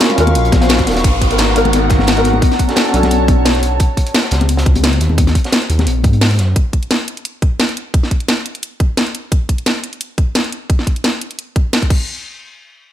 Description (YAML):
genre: liquid drum and bass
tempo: 174 BPM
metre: 4/4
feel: swing 53% on 16ths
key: G# minor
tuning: A4 = 440 Hz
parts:
  - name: felt-muted upright piano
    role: accompaniment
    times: 0.0-3.8 s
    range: B3 to B#4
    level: -18 LUFS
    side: equal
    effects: vintage 12-bit sampler grit, digital delay
  - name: glassy FM pad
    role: sustained chords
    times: 0.0-3.8 s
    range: B3 to C#6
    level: -21 LUFS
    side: left 1 dB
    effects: ensemble chorus, built-in reverb, sidechain pumping
  - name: crunchy breakbeat drum kit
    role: drums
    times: 0.0-6.5 s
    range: hi-hat, snare drum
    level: -24 LUFS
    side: equal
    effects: high-pass filter on hats, studio reverb, high-pass filter on snare, high-pass filter on room
  - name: garage drum kit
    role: drums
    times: 0.0-12.0 s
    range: crash cymbal, hi-hat, snare drum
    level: -17 LUFS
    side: equal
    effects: studio reverb
  - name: dark detuned saw bass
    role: bass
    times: 0.2-6.5 s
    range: D#1 to G#2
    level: -15 LUFS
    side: equal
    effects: none
  - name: congas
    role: percussion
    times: 0.3-6.1 s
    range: none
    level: -20 LUFS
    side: left 6 dB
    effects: none
  - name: electronic kick drum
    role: drums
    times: 0.5-12.0 s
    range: none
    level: -14 LUFS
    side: equal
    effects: studio reverb
  - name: downlifter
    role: sound effects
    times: 1.0-3.8 s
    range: none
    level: -23 LUFS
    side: equal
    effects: none
room: light reverb, studio reverb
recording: none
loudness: -12 LUFS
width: side -11 dB against mid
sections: 0.0-1.0 A section; 1.0-12.1 B section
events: drop 0.0-1.0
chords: 0.0 D#m9; 1.0 G#m9; 2.4 Bm9; 3.8 C#sus2; 5.2 D#m; 6.6 N.C.